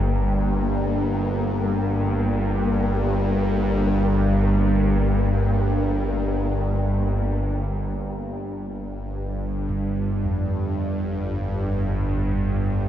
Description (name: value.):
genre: dark ambient drone.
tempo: free time.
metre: none.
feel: none.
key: G minor.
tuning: A4 = 440 Hz.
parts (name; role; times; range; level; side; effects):
gamelan-type bossed gongs; arpeggios; 0.0-1.6, 9.7-12.9 s; F2 to A4; -28 LUFS; equal; diffuse ambient delay.
bowed-like drone; drone; 0.0-12.9 s; G1 to G2; -22 LUFS; equal; built-in reverb, phaser.
wind-like tuned noise texture; texture; 0.0-8.0 s; G3 to Bb3; -28 LUFS; left 1 dB; built-in reverb.
room: wet huge ambient reverb, RT60 8.9 s.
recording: dark, warm production.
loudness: -21 LUFS.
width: side -11 dB against mid.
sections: 0.0-8.0 A section; 8.0-12.9 B section.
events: none.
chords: 0.0 Gmadd9; 8.0 N.C..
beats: free time.